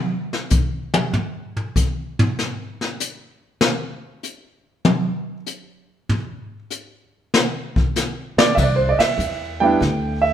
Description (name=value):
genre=jazz piano trio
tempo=97 BPM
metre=4/4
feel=swing 69% on 8ths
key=unclear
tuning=A4 = 440 Hz
part: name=jazz brush drum kit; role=drums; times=0.3-10.3 s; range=brushed snare drum, crash cymbal, hi-hat, kick drum, ride cymbal, snare drum, toms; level=-20 LUFS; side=left 1 dB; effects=none
part: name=clear baby grand piano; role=melody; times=8.4-10.3 s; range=G3 to G5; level=-18 LUFS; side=right 4 dB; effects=none
part: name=upright bass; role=bass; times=8.4-10.3 s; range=C2 to E2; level=-23 LUFS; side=equal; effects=none
room=wet stone room reverb, RT60 1.2 s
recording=band playing live in one room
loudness=-18 LUFS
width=side -10 dB against mid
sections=0.0-8.6 A section; 8.6-10.3 B section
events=grand piano solo 0.0-8.6; drum solo 0.0-8.6; band accent 8.9-9.2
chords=0.0 N.C.; 8.6 Cadd9